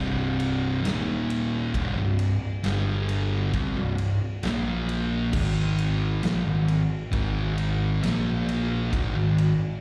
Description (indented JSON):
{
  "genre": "stoner and doom metal",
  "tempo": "67 BPM",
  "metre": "4/4",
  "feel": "straight",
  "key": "C minor",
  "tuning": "A4 = 441 Hz",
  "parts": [
    { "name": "thick fuzz guitar", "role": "riff", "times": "0.0-9.5 s", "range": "C2 to Bb3", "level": "-28 LUFS", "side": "equal", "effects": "distortion" },
    { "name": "thick fuzz guitar", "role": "riff", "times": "0.0-9.5 s", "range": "C2 to Bb3", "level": "-34 LUFS", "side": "equal", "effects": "none" },
    { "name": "fuzz picked electric bass", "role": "bass", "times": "0.0-9.6 s", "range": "C1 to C2", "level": "-33 LUFS", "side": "equal", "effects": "overdrive" },
    { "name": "big rock drum kit", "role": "drums", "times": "0.4-9.6 s", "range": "crash cymbal, kick drum, ride cymbal, snare drum", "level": "-36 LUFS", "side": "equal", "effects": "none" }
  ],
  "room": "light reverb",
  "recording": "live gig heard through the venue's PA, recital hall reverb",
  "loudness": "-26 LUFS",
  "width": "mono",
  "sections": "0.0-9.8 A section",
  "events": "none",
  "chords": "0.0 C5; 0.8 Eb5; 1.7 C5; 2.6 G5; 3.5 C5; 4.4 Bb5; 5.3 Ab5; 8.0 Bb5; 8.9 Ab5"
}